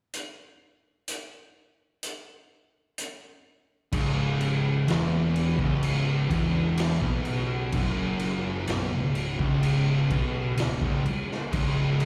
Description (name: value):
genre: stoner and doom metal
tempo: 63 BPM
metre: 4/4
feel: straight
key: C# minor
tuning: A4 = 442 Hz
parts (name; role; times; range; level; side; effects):
- raw garage drum kit; drums; 0.1-12.1 s; crash cymbal, hi-hat, kick drum, snare drum; -33 LUFS; equal; none
- mellow tonewheel organ; sustained chords; 3.9-12.1 s; C#3 to C#4; -42 LUFS; equal; none
- overdriven electric guitar; riff; 3.9-12.1 s; C#2 to B2; -35 LUFS; equal; slapback echo
- thick fuzz guitar; riff; 3.9-12.1 s; C#2 to B2; -32 LUFS; equal; none
- thick fuzz guitar; riff; 3.9-12.1 s; C#2 to B2; -32 LUFS; equal; none
- fuzz picked electric bass; bass; 3.9-12.1 s; C#1 to B1; -34 LUFS; equal; overdrive
room: small room ambience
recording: live gig heard through the venue's PA, recital hall reverb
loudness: -26 LUFS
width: mono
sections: 0.1-3.9 A section; 3.9-12.1 B section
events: none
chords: 0.1 N.C.; 3.9 C#m